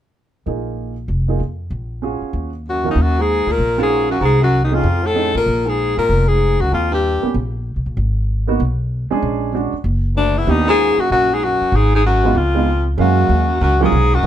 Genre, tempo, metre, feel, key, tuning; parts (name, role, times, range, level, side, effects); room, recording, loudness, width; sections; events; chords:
jazz, small-group swing and bop; 192 BPM; 4/4; swing 63% on 8ths; Eb minor; A4 = 440 Hz
warm upright piano; accompaniment; 0.5-14.3 s; Eb3 to F5; -20 LUFS; right 6 dB
upright bass; bass; 0.5-14.3 s; F1 to Gb2; -18 LUFS; equal
bright alto saxophone; melody; 2.7-7.3, 10.2-14.3 s; D4 to Bb4; -17 LUFS; left 3 dB; plate reverb
warm baritone saxophone; second line; 2.7-7.3, 10.2-14.3 s; D2 to Bb2; -22 LUFS; right 4 dB
moderate studio reverb, RT60 0.6 s; -15 LUFS; side -11 dB against mid
0.5-3.0 A section; 3.0-13.0 B section; 13.0-14.3 C section
0.5 Bb7sus4; 1.7 Ebm11/Bb; 3.0 Ebm7; 4.2 Ab13b9/C; 4.8 F7alt; 5.5 Bb7(no3); 6.7 Eb(b13); 8.0 Abm; 9.2 Bb7alt; 10.5 Ebm7; 11.7 Abm7; 12.4 Db7; 13.0 Gbmaj7